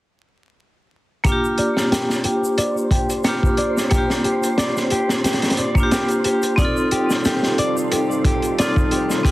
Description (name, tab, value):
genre	trip hop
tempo	90 BPM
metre	4/4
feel	swing 54% on 16ths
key	G minor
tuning	A4 = 440 Hz
part	vibraphone with hard mallets	accompaniment	1.2-9.3 s	Bb3 to A4	-21 LUFS	equal	tremolo, tape echo
part	crunchy breakbeat drum kit	drums	1.2-9.3 s	hi-hat, kick drum, snare drum	-20 LUFS	equal	none
part	flamenco guitar	arpeggios	1.3-9.3 s	G4 to D5	-24 LUFS	left 1 dB	low-pass filter, tape echo
part	egg shaker	percussion	1.3-9.3 s	none	-35 LUFS	equal	none
part	wind-like tuned noise texture	texture	2.3-9.3 s	C5	-31 LUFS	right 2 dB	built-in reverb
part	string machine, cellos	sustained chords	6.9-9.3 s	G3 to A4	-27 LUFS	equal	ensemble chorus
room	light reverb, small room ambience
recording	heavily compressed radio sound, vinyl crackle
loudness	-17 LUFS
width	side -17 dB against mid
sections	1.3-9.3 A section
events	filter sweep on nylon-string guitar 1.3-9.3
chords	1.3 Gm7; 6.6 F7/G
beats	| 1.26 1.93 2.59 3.26 | 3.92 4.59 5.26 5.92 | 6.59 7.26 7.92 8.59 | 9.26